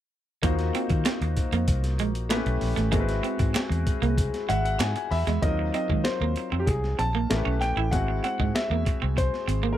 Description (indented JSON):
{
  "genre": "polished 1980s jazz-funk pop",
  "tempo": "96 BPM",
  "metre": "4/4",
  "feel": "straight",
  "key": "Eb dorian",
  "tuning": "A4 = 440 Hz",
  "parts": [
    { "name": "clear concert grand piano", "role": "accompaniment", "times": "0.4-9.8 s", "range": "Gb3 to B5", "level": "-31 LUFS", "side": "left 4 dB", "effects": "wide subtle chorus" },
    { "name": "electric guitar at the edge of break-up", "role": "riff", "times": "0.4-9.7 s", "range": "Ab3 to E4", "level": "-30 LUFS", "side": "right 9 dB", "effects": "lush chorus" },
    { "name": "vintage muted fingered electric bass", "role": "bass", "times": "0.4-9.7 s", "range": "Ab1 to Eb3", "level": "-27 LUFS", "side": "equal", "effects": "none" },
    { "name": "breakbeat sampler-style drum kit", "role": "drums", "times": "0.4-9.6 s", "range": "hi-hat, kick drum, snare drum", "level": "-28 LUFS", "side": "equal", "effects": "none" },
    { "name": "group handclap", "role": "percussion", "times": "1.1-4.9 s", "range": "none", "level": "-39 LUFS", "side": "right 5 dB", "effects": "none" },
    { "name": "warm grand piano", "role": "melody", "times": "4.5-9.8 s", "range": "G4 to A5", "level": "-30 LUFS", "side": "equal", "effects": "slapback echo" }
  ],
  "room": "little or no reverb",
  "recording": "dry, close 1970s-style studio recording",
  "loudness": "-23 LUFS",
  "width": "side -12 dB against mid",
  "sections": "0.4-5.4 A section; 5.4-9.8 B section",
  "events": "grand piano fill 4.2-5.4",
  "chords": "0.4 Ebm69; 2.3 A9; 2.9 Ab7alt; 5.4 Ebm69; 7.3 A9; 7.9 Ab7b13"
}